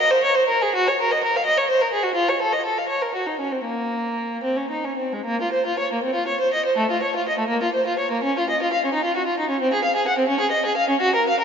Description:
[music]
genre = classical, baroque-style suite movement for unaccompanied violin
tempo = 66-91 BPM (dotted quarters)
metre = 6/8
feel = rubato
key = Bb minor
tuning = A4 = 440 Hz
[part]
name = rich violin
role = solo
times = 0.0-11.4 s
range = Ab3 to Gb5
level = -19 LUFS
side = equal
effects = none
[sound]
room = wet church reverb, RT60 2.8 s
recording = nothing above 7.5 kHz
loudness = -19 LUFS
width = side -7 dB against mid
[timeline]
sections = 0.0-5.3 A section; 5.3-11.4 B section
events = none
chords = none

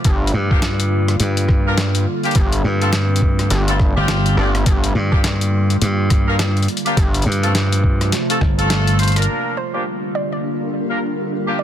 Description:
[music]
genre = glitch hop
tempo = 104 BPM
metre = 4/4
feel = swing 60% on 16ths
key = G minor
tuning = A4 = 440 Hz
[part]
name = warbly tape-like pad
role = sustained chords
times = 0.0-11.6 s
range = G2 to F4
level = -24 LUFS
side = equal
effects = chorus, built-in reverb, sidechain pumping
[part]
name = gritty driven synth bass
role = bass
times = 0.0-7.2 s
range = G1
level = -18 LUFS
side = equal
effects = none
[part]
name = boom bap sampler-style drum kit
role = drums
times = 0.0-9.3 s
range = hi-hat, rim click, snare drum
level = -23 LUFS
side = left 1 dB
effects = none
[part]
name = electronic kick drum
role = drums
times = 0.0-8.6 s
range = none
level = -16 LUFS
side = equal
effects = none
[part]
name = slap bass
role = bass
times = 0.3-9.3 s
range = G1 to G2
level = -17 LUFS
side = equal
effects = none
[part]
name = warm horn section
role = stabs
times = 0.5-11.6 s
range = A3 to D5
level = -24 LUFS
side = left 1 dB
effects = sidechain pumping, low-pass filter, dub echo
[part]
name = granular cloud pad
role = texture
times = 9.9-11.6 s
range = G3 to F5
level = -27 LUFS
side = right 1 dB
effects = built-in reverb, sidechain pumping
[part]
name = woody wave-folded pluck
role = melody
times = 9.6-11.6 s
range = C5 to D5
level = -28 LUFS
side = right 3 dB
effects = chorus, dub echo
[sound]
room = digital ambience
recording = dense, heavily limited modern master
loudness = -15 LUFS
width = side -10 dB against mid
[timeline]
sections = 0.0-9.3 A section; 9.3-11.6 B section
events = kick drops out 8.7-9.3; drum fill 9.0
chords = 0.0 Gm7; 2.4 Dm7/G; 4.7 Gm7; 7.0 F/G; 9.3 Gm7

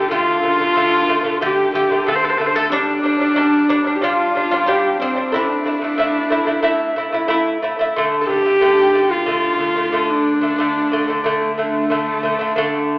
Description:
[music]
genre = mongolian traditional, Mongolian folk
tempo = 92 BPM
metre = 4/4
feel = straight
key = D minor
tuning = A4 = 440 Hz
[part]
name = rich horsehead fiddle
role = melody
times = 0.0-13.0 s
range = A3 to C5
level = -17 LUFS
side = equal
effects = none
[part]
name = guzheng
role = second line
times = 0.0-8.2 s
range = C4 to A4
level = -22 LUFS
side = left 1 dB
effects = none
[part]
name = lute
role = arpeggios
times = 0.0-13.0 s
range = D3 to E4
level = -18 LUFS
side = equal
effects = none
[part]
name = warm double bass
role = drone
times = 8.0-13.0 s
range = D2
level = -38 LUFS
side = equal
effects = none
[sound]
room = wet large studio reverb, RT60 1.3 s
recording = band playing live in one room, AM radio sound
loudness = -15 LUFS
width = side -23 dB against mid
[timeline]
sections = 0.0-8.0 A section; 8.0-13.0 B section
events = none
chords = 0.0 D5; 2.7 G5; 5.3 A5; 8.0 D5

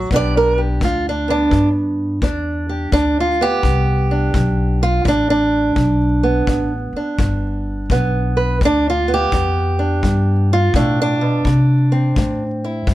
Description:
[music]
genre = acoustic country blues, solo or duo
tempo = 84 BPM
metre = 4/4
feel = swing 64% on 8ths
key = G mixolydian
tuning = A4 = 440 Hz
[part]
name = fingerpicked old ladder-braced acoustic guitar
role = melody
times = 0.0-12.9 s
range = G2 to D5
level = -17 LUFS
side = right 2 dB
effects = none
[part]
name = upright bass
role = bass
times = 0.0-12.9 s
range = G1 to C3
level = -18 LUFS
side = left 1 dB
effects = none
[part]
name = kick drum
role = drums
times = 0.1-12.9 s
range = none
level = -21 LUFS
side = left 2 dB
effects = none
[sound]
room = light reverb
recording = none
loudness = -14 LUFS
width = side -15 dB against mid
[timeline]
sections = 0.1-12.9 A section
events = steel-string acoustic guitar solo 0.1-12.9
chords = 0.1 G; 11.5 C5

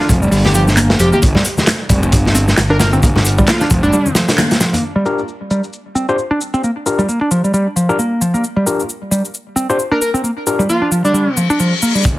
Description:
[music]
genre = breakbeat, breaks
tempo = 133 BPM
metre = 4/4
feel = swing 57% on 16ths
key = G minor pentatonic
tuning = A4 = 440 Hz
[part]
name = plucky unison lead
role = melody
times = 0.0-4.2, 9.9-11.4 s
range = D4 to Bb4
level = -19 LUFS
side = equal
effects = old record sound, digital delay
[part]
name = picked electric bass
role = riff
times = 0.0-12.0 s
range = F3 to D4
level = -16 LUFS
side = equal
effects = tube saturation, low-pass filter, digital delay
[part]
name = crunchy breakbeat drum kit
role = drums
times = 0.0-4.8, 12.0-12.2 s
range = hi-hat, kick drum, snare drum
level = -15 LUFS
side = equal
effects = none
[part]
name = congas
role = percussion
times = 0.0-4.8 s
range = none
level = -23 LUFS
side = left 2 dB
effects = none
[part]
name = fuzz fingered electric bass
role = bass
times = 0.1-3.9, 12.1-12.2 s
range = F1 to G1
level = -15 LUFS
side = equal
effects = overdrive, low-pass filter
[part]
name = electronic shaker and handclaps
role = drums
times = 0.1-12.2 s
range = none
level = -22 LUFS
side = left 1 dB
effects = low-pass filter on perc, low-pass filter on snare
[part]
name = overdriven tine electric piano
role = stabs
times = 5.1-10.6 s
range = D4 to C5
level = -19 LUFS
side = left 3 dB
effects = low-pass filter, digital delay
[part]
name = reverse cymbal and riser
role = sound effects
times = 11.3-12.2 s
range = none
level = -20 LUFS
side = left 6 dB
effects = none
[sound]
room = moderate studio reverb, RT60 0.6 s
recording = heavily compressed radio sound, multiband compression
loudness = -12 LUFS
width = side -17 dB against mid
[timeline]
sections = 0.0-4.8 A section; 4.8-12.1 B section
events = kick drops out 3.9-4.8; band accent 4.4; filter sweep on tine electric piano 4.8-12.1; reverse cymbal 11.3-12.1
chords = 0.0 Gm7

